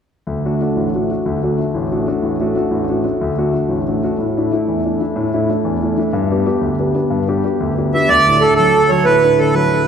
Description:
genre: celtic folk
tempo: 123 BPM (dotted quarters)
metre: 12/8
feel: straight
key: D major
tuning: A4 = 436 Hz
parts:
  - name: warm grand piano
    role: accompaniment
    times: 0.3-9.9 s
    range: A1 to G4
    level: -16 LUFS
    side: left 1 dB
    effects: none
  - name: accordion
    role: melody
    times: 7.9-9.9 s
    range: A4 to E5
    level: -11 LUFS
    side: right 3 dB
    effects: none
room: wet scoring stage reverb, RT60 1.8 s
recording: recorded in a church or concert hall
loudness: -14 LUFS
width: side -7 dB against mid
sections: 0.3-8.1 A section; 8.1-9.9 B section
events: none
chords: 0.3 D; 4.2 Asus4; 6.1 G; 8.1 D

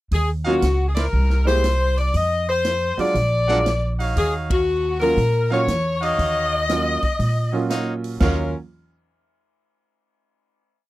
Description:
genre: jazz, big band swing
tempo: 118 BPM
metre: 4/4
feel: swing 67% on 8ths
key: Eb minor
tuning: A4 = 440 Hz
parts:
  - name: edgy saxophone section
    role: melody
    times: 0.1-8.5 s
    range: Gb3 to Eb5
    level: -21 LUFS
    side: left 2 dB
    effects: none
  - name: upright bass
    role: bass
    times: 0.1-8.5 s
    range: Bb1 to Bb2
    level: -22 LUFS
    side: equal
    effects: none
  - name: swinging big-band drum kit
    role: drums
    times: 0.1-8.4 s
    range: crash cymbal, hi-hat, kick drum, ride cymbal, snare drum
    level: -27 LUFS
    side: equal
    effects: none
  - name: clear trumpet section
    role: stabs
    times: 0.4-8.4 s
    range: D4 to Gb5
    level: -27 LUFS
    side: right 2 dB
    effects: none
  - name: bright upright piano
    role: accompaniment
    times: 0.5-8.5 s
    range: Gb3 to G4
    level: -24 LUFS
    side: right 5 dB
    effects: none
room: little or no reverb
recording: dry, close 1970s-style studio recording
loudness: -18 LUFS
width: side -16 dB against mid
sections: 0.1-8.2 A section; 8.2-10.2 final chord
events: band accent 0.9, 4.4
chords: 0.1 Ebm9; 1.1 C7b13; 2.1 Fm; 3.1 Bb7b13; 4.2 Ebm9

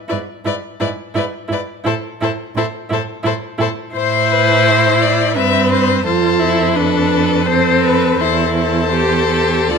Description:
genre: classical, slow romantic movement for string quartet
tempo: 85 BPM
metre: 3/4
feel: uneven beats, rubato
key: A minor, C major from 3.9 s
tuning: A4 = 440 Hz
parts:
  - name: rich violin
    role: melody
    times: 0.1-9.8 s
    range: A4 to E5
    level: -20 LUFS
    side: left 12 dB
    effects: none
  - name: rich violin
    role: second line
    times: 0.1-9.8 s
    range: A4 to C5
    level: -19 LUFS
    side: left 4 dB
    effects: none
  - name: rich viola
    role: accompaniment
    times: 0.1-9.8 s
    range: C4 to G4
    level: -18 LUFS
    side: right 2 dB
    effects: none
  - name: warm cello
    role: bass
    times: 0.1-9.8 s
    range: D2 to A2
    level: -20 LUFS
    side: right 6 dB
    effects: none
room: moderate large studio reverb, RT60 1.4 s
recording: none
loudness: -13 LUFS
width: side -6 dB against mid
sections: 0.0-9.8 A section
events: none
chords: 0.0 E7/G#; 1.9 Am; 6.0 Fmaj7; 8.2 C/E

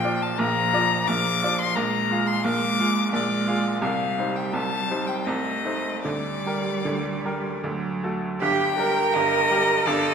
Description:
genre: classical, slow romantic movement for piano trio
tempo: 74-88 BPM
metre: 3/4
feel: rubato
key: G minor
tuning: A4 = 441 Hz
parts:
  - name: rich violin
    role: melody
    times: 0.0-10.1 s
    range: D5 to D6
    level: -25 LUFS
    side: left 7 dB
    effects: none
  - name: rich cello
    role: second line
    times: 0.0-10.1 s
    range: F3 to Bb4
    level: -27 LUFS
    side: right 5 dB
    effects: none
  - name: bright baby grand piano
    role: accompaniment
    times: 0.0-10.1 s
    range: G1 to F5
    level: -25 LUFS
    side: right 1 dB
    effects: none
room: wet concert hall reverb, RT60 1.9 s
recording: none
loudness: -21 LUFS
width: side -6 dB against mid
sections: 0.0-8.4 A section; 8.4-10.1 B section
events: none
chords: 0.0 Bb; 1.8 Bb7; 3.8 Cm; 5.3 Adim/C; 6.0 Gm/D; 7.6 D; 8.4 Gm

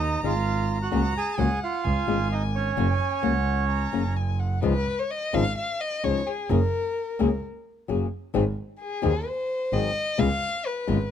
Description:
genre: tango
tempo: 130 BPM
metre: 4/4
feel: rubato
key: F# major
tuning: A4 = 436 Hz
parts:
  - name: bandoneon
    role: melody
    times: 0.0-4.1 s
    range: C#4 to G#5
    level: -27 LUFS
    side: right 6 dB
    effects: none
  - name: warm violin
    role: second line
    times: 0.0-11.1 s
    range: G#4 to A#5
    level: -30 LUFS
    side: left 3 dB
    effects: none
  - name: clear double bass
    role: bass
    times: 0.0-11.1 s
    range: F#1 to D#2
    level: -26 LUFS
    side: right 2 dB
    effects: none
  - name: flamenco guitar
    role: accompaniment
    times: 0.2-11.0 s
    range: C#3 to G#4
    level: -26 LUFS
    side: left 8 dB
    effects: none
room: little or no reverb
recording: close, detailed microphones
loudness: -23 LUFS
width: side -9 dB against mid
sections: 0.0-4.6 A section; 4.6-11.1 B section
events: violin solo 4.6-11.1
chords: 0.0 G#sus2; 0.9 F#/C#; 1.8 C#; 2.8 F#; 4.6 C#add9; 6.5 F#add9; 8.3 G#7; 10.2 C#7

